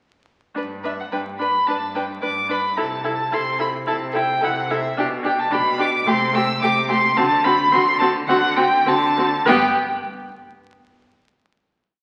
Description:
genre	quick classical-period movement for string quartet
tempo	108 BPM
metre	4/4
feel	uneven beats, rubato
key	G major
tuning	A4 = 440 Hz
part	rich violin	second line	0.6-9.8 s	F#4 to B4	-28 LUFS	equal	none
part	clear viola	accompaniment	0.6-9.8 s	A3 to E4	-27 LUFS	equal	none
part	clear cello	bass	0.6-9.8 s	G2 to D3	-30 LUFS	equal	none
part	rich violin	melody	0.9-9.8 s	E5 to E6	-22 LUFS	equal	none
room	wet recital hall reverb, RT60 1.6 s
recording	very old 78 rpm record, vinyl crackle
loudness	-20 LUFS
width	mono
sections	0.6-9.5 A section; 9.5-11.8 final chord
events	none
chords	0.6 G; 2.8 Am/C; 5.0 G/B; 6.1 Am7/C; 7.2 D7; 9.5 G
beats	| 0.57 1.13 1.69 2.24 | 2.79 3.33 3.88 4.43 | 4.98 5.52 6.07 6.62 | 7.17 7.72 8.29 8.87 | 9.47

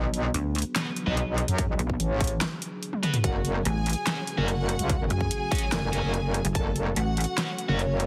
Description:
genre	heavy wobble dubstep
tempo	145 BPM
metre	4/4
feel	half-time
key	F# minor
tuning	A4 = 438 Hz
part	evolving wavetable pad	sustained chords	0.0-8.1 s	C#3 to G#4	-40 LUFS	equal	none
part	metallic wobble bass	bass	0.0-8.1 s	F#1 to F#2	-29 LUFS	equal	chorus, overdrive
part	big-room dance drum kit	drums	0.1-8.1 s	handclaps, hi-hat, snare drum, toms	-33 LUFS	equal	overdrive
part	pulsing pluck wobble bass	bass	0.3-7.3 s	F#1 to F#2	-28 LUFS	equal	chorus, overdrive
part	tight distorted guitar	stabs	0.8-7.8 s	F#3 to B4	-37 LUFS	equal	distortion, dub echo
part	electronic kick drum	drums	1.6-6.6 s	none	-31 LUFS	equal	overdrive
part	dark studio violin section	melody	3.2-8.1 s	C#4 to A5	-36 LUFS	equal	dub echo
room	light reverb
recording	heavily compressed radio sound, multiband compression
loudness	-27 LUFS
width	mono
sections	0.0-8.1 A section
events	drum fill 2.9-3.2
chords	0.0 Bm; 3.2 F#m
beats	0.34 0.76 1.17 | 1.58 2.00 2.41 2.83 | 3.24 3.65 4.07 4.48 | 4.89 5.31 5.72 6.14 | 6.55 6.96 7.38 7.79

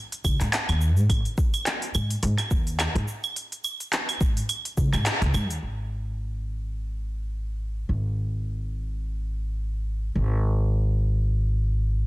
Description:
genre	organic downtempo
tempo	106 BPM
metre	4/4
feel	swing 56% on 16ths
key	unclear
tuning	A4 = 442 Hz
part	organic electronic drum kit	drums	0.1-5.6 s	claves, handclaps, hi-hat, shaker	-27 LUFS	right 1 dB	overdrive, low-pass filter on hats, low-pass filter on snare, low-pass filter on perc, low-pass filter on room
part	upright bass	bass	0.2-12.1 s	G#1 to G#2	-24 LUFS	equal	sidechain pumping
part	electronic kick drum	drums	0.2-4.9 s	none	-24 LUFS	equal	overdrive
room	little or no reverb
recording	dense, heavily limited modern master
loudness	-24 LUFS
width	side -18 dB against mid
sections	0.0-5.6 A section; 5.6-12.1 B section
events	band accent 5.1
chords	none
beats	0.53 | 1.09 1.66 2.23 2.79 | 3.36 3.92 4.49 5.06 | 5.62 6.19 6.75 7.32 | 7.89 8.45 9.02 9.59 | 10.15 10.72 11.28 11.85

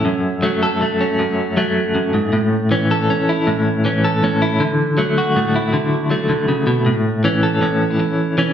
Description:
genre	highlife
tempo	106 BPM (dotted quarters)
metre	12/8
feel	straight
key	A major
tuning	A4 = 440 Hz
part	clean electric guitar	solo	0.0-8.5 s	F#2 to A4	-15 LUFS	equal	tremolo
room	wet large studio reverb, RT60 1.2 s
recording	band playing live in one room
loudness	-15 LUFS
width	side -9 dB against mid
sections	0.0-8.5 A section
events	none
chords	0.1 F#m; 2.3 A; 4.6 Dadd9; 6.9 A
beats	| 0.06 0.62 1.19 1.76 | 2.33 2.90 3.46 4.03 | 4.60 5.16 5.73 6.29 | 6.86 7.43 7.99

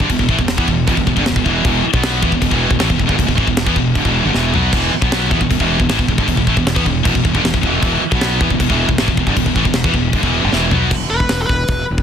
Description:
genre	heavy metal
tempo	156 BPM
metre	4/4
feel	straight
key	E minor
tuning	A4 = 439 Hz
part	high-gain distorted guitar	riff	0.0-10.9 s	E2 to B3	-19 LUFS	left 12 dB	distortion
part	high-gain distorted guitar	riff	0.0-10.9 s	E2 to B3	-19 LUFS	right 12 dB	distortion
part	fuzz fingered electric bass	bass	0.0-12.0 s	E1 to E2	-20 LUFS	equal	overdrive
part	modern studio drum kit	drums	0.0-12.0 s	crash cymbal, hi-hat, kick drum, snare drum, toms	-18 LUFS	equal	none
part	high-gain lead guitar	melody	11.1-11.8 s	A4 to B4	-19 LUFS	left 1 dB	distortion, ping-pong delay
room	small room ambience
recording	dense, heavily limited modern master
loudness	-13 LUFS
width	side -8 dB against mid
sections	0.0-10.9 A section; 10.9-12.0 B section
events	drum fill 4.3-4.7, 10.5-10.9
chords	0.0 Em; 10.9 E5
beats	| 0.11 0.49 0.88 1.27 | 1.65 2.04 2.42 2.81 | 3.19 3.58 3.96 4.35 | 4.73 5.12 5.51 5.89 | 6.28 6.66 7.05 7.43 | 7.82 8.21 8.59 8.98 | 9.36 9.75 10.14 10.52 | 10.91 11.30 11.69

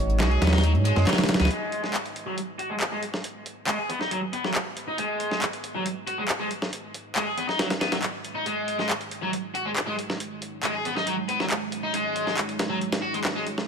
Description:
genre	breakbeat, breaks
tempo	138 BPM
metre	4/4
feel	straight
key	G# minor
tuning	A4 = 445 Hz
part	dark analog pad	sustained chords	0.0-13.7 s	G#3 to C#5	-36 LUFS	right 3 dB	chorus, vintage 12-bit sampler grit
part	saturated sub bass	bass	0.0-1.5 s	G#1 to G#2	-21 LUFS	equal	tube saturation
part	house drum kit	drums	0.1-13.3 s	handclaps, hi-hat	-31 LUFS	left 1 dB	overdrive, small room ambience
part	distorted electric guitar	riff	0.2-13.4 s	F#3 to G#4	-28 LUFS	left 1 dB	overdrive, low-pass filter, tape echo
part	dusty soul sampler-style drum kit	drums	0.2-13.7 s	hi-hat, snare drum	-28 LUFS	equal	high-pass filter on kick, small room ambience, high-pass filter on hats, high-pass filter on snare
room	light reverb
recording	none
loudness	-24 LUFS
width	side -6 dB against mid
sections	0.0-1.5 A section; 1.5-13.7 B section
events	kick drops out 0.6-1.5; band accent 1.1; filter sweep on analog synth pad 1.5-13.7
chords	0.0 G#m7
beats	0.20 0.64 1.07 | 1.50 1.94 2.38 2.81 | 3.25 3.68 4.11 4.55 | 4.98 5.42 5.85 6.29 | 6.72 7.16 7.59 8.03 | 8.46 8.90 9.33 9.77 | 10.20 10.64 11.07 11.51 | 11.94 12.38 12.81 13.24

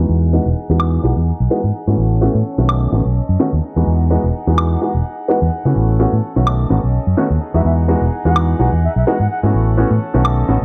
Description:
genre	filtered disco house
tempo	127 BPM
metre	4/4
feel	swing 55% on 16ths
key	E major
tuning	A4 = 440 Hz
part	clear baby grand piano	accompaniment	0.0-10.6 s	D#3 to F#4	-21 LUFS	equal	phaser, low-pass filter
part	clear chamber violin section	sustained chords	0.0-10.6 s	C#4 to F#5	-30 LUFS	equal	low-pass filter
part	fingered electric bass	bass	0.0-10.6 s	E1 to C#3	-17 LUFS	equal	low-pass filter
part	woodblock	drums	0.8-10.4 s	none	-23 LUFS	equal	low-pass filter on hats, low-pass filter on snare, low-pass filter on perc
part	silver concert flute	melody	7.5-9.4 s	E5 to F#5	-26 LUFS	equal	low-pass filter, delay
room	light reverb, studio ambience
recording	none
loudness	-16 LUFS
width	mono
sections	0.0-10.6 A section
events	filter sweep 0.0-10.6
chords	0.0 Emaj9; 2.0 A6; 2.7 B9; 3.6 Emaj9; 5.8 A6; 6.5 B9; 7.4 Emaj9; 9.5 A6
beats	| 0.09 0.56 1.04 1.51 | 1.98 2.45 2.93 3.40 | 3.87 4.34 4.82 5.29 | 5.76 6.23 6.71 7.18 | 7.65 8.12 8.60 9.07 | 9.54 10.01 10.48

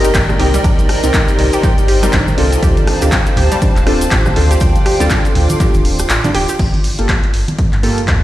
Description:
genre	deep house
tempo	121 BPM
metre	4/4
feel	swing 59% on 16ths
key	G minor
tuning	A4 = 440 Hz
part	hollow soft pad	sustained chords	0.0-6.6 s	Bb4 to A5	-23 LUFS	equal	ensemble chorus, sidechain pumping
part	analog pluck	arpeggios	0.0-6.6 s	G3 to G5	-22 LUFS	right 1 dB	chorus, sidechain pumping, dub echo
part	warm analog keys	stabs	0.0-8.0 s	Bb3 to Bb4	-20 LUFS	equal	chorus, sidechain pumping, dub echo
part	sub bass with octave	bass	0.0-8.2 s	D1 to G2	-16 LUFS	equal	sidechain pumping
part	punchy analog drum machine	drums	0.0-8.2 s	crash cymbal, handclaps, hi-hat, rim click	-20 LUFS	equal	none
part	cabasa	percussion	0.0-6.6 s	none	-29 LUFS	left 3 dB	none
part	dark symphonic violin section	texture	0.0-6.6 s	G4 to G5	-30 LUFS	left 2 dB	none
part	granular cloud pad	texture	0.0-6.6 s	Bb3 to C6	-25 LUFS	right 1 dB	built-in reverb, sidechain pumping
part	electronic kick drum	drums	0.1-8.2 s	none	-15 LUFS	equal	none
part	congas	percussion	0.3-7.6 s	none	-22 LUFS	right 1 dB	sidechain pumping on perc
room	digital ambience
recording	played on a big sound system in a bare room, stone room reverb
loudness	-11 LUFS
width	side -14 dB against mid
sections	0.0-6.6 A section; 6.6-8.2 B section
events	drop 0.0-6.6; kick drops out 6.1-6.6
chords	0.0 Gm; 2.6 Dm7; 6.6 Gm9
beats	0.15 | 0.64 1.14 1.64 2.13 | 2.63 3.12 3.62 4.11 | 4.61 5.11 5.60 6.10 | 6.59 7.09 7.58 8.08

